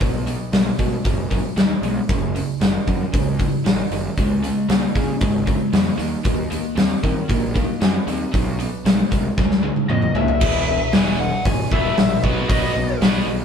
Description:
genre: classic rock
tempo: 115 BPM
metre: 4/4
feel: straight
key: unclear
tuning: A4 = 439 Hz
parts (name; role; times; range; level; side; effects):
- overdriven electric guitar; riff; 0.0-13.4 s; E2 to B#3; -24 LUFS; equal; none
- fuzz picked electric bass; bass; 0.0-13.4 s; E1 to D#3; -26 LUFS; equal; overdrive
- huge arena drum kit; drums; 0.0-13.1 s; crash cymbal, hi-hat, kick drum, snare drum, toms; -19 LUFS; equal; none
- lead guitar through a small cranked amp; melody; 9.9-13.0 s; D#5 to G#5; -24 LUFS; left 4 dB; overdrive
- reed electric piano; accompaniment; 10.4-13.4 s; F#4 to E5; -31 LUFS; left 2 dB; overdrive
room: light reverb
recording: band playing live in one room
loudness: -17 LUFS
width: side -7 dB against mid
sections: 0.0-10.4 A section; 10.4-13.4 B section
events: drum fill 9.4-10.4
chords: 0.0 B5; 2.1 F#5; 4.2 C#5; 6.0 D#5; 8.3 B5; 9.4 C#; 10.4 E; 12.2 B

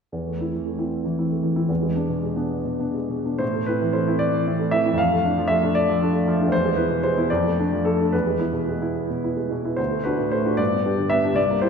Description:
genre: classical, romantic character piece for solo piano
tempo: 64-80 BPM (dotted quarters)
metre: 6/8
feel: rubato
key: A minor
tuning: A4 = 440 Hz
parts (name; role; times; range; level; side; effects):
- warm grand piano; solo; 0.1-11.7 s; C2 to F5; -20 LUFS; equal; none
room: wet scoring stage reverb, RT60 1.5 s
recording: minimal, uncompressed stereo recording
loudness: -20 LUFS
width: side -6 dB against mid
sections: 0.1-3.4 A section; 3.4-11.7 B section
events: none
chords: 0.1 Am/E; 1.7 E7; 3.4 Am; 5.0 Dm/F; 6.5 E; 7.3 Dm/F; 8.1 E; 9.8 D; 10.6 G

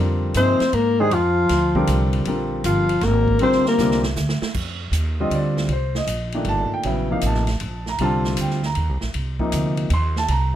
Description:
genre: modal jazz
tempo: 157 BPM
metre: 3/4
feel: swing 66% on 8ths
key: Bb mixolydian, F mixolydian from 4.6 s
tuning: A4 = 440 Hz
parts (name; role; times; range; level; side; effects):
- warm grand piano; accompaniment; 0.0-10.5 s; Bb2 to C6; -23 LUFS; equal; none
- upright bass; bass; 0.0-10.6 s; G1 to Ab2; -22 LUFS; right 1 dB; none
- swinging big-band drum kit; drums; 0.3-10.4 s; crash cymbal, hi-hat, kick drum, ride cymbal, snare drum; -30 LUFS; right 1 dB; none
- mellow alto saxophone; melody; 0.4-4.0 s; F4 to C5; -20 LUFS; left 1 dB; none
- clear bass clarinet; second line; 0.4-4.0 s; F3 to C4; -22 LUFS; left 3 dB; none
room: light reverb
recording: dark, warm production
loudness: -18 LUFS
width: side -11 dB against mid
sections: 0.0-4.6 A section; 4.6-10.6 B section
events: drum fill 3.8-4.6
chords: 0.0 Bb9; 4.6 F9sus4

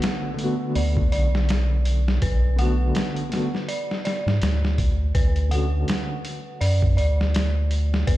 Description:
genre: trip hop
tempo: 82 BPM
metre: 4/4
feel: swing 58% on 16ths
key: B minor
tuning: A4 = 439 Hz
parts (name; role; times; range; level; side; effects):
- felt-muted upright piano; accompaniment; 0.0-6.2 s; D3 to F#4; -28 LUFS; equal; tremolo, tape echo
- dark detuned synth bell; arpeggios; 0.0-8.2 s; B4 to F#5; -32 LUFS; equal; chorus, tremolo, ping-pong delay
- boom bap sampler-style drum kit; drums; 0.0-8.2 s; hi-hat, kick drum, snare drum; -25 LUFS; equal; none
- round analog bass; bass; 0.8-8.2 s; B1 to G#2; -20 LUFS; equal; none
room: little or no reverb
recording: played on a big sound system in a bare room, large studio reverb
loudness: -20 LUFS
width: side -16 dB against mid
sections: 0.0-8.2 A section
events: none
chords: 0.0 Bm7; 5.1 Dmaj7

